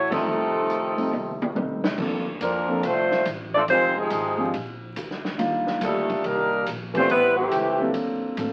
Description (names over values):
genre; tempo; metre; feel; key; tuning
jazz, big band swing; 141 BPM; 4/4; swing 65% on 8ths; Bb major; A4 = 441 Hz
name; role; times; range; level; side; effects
dark saxophone section; melody; 0.0-7.9 s; E3 to D5; -25 LUFS; equal; none
upright bass; bass; 0.0-8.5 s; F1 to A2; -40 LUFS; equal; none
clear trombone section; second line; 0.1-7.9 s; Bb2 to D4; -30 LUFS; equal; none
warm grand piano; accompaniment; 0.1-8.5 s; Eb3 to D5; -29 LUFS; equal; none
swinging big-band drum kit; drums; 0.1-8.5 s; crash cymbal, hi-hat, kick drum, ride cymbal, snare drum, toms; -35 LUFS; equal; none
room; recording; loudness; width
wet studio reverb, RT60 0.6 s; very old 78 rpm record, vinyl crackle, faint mains hum; -24 LUFS; mono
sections
0.0-2.0 A section; 2.0-8.5 B section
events
band accent 0.1; drum fill 1.1-2.0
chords
0.3 F7; 2.0 Bbmaj9; 3.7 Fm7; 4.5 Bb; 5.4 Ebmaj7; 7.1 Am7; 8.0 D7b13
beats
| 0.27 0.70 1.12 1.55 | 1.98 2.40 2.83 3.26 | 3.69 4.11 4.54 4.96 | 5.39 5.82 6.25 6.67 | 7.10 7.53 7.95 8.38